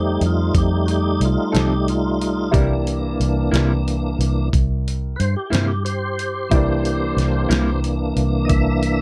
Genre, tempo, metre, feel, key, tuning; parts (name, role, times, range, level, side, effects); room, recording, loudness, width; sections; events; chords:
slow blues; 60 BPM (dotted quarters); 12/8; straight; C mixolydian; A4 = 440 Hz
warm upright piano; accompaniment; 0.0-9.0 s; Eb4 to D5; -31 LUFS; equal
tonewheel organ; sustained chords; 0.0-9.0 s; E3 to E5; -24 LUFS; equal; chorus vibrato, slow rotary speaker
vintage muted fingered electric bass; bass; 0.0-9.0 s; C2 to G2; -23 LUFS; equal
dusty soul sampler-style drum kit; drums; 0.2-9.0 s; hi-hat, kick drum, snare drum; -24 LUFS; equal
clean electric guitar; accompaniment; 1.5-7.7 s; C3 to A4; -25 LUFS; equal; tremolo
light reverb; dark, warm production; -20 LUFS; mono
0.0-9.0 A section
tonewheel organ solo 0.0-9.0
0.0 F7; 2.5 C7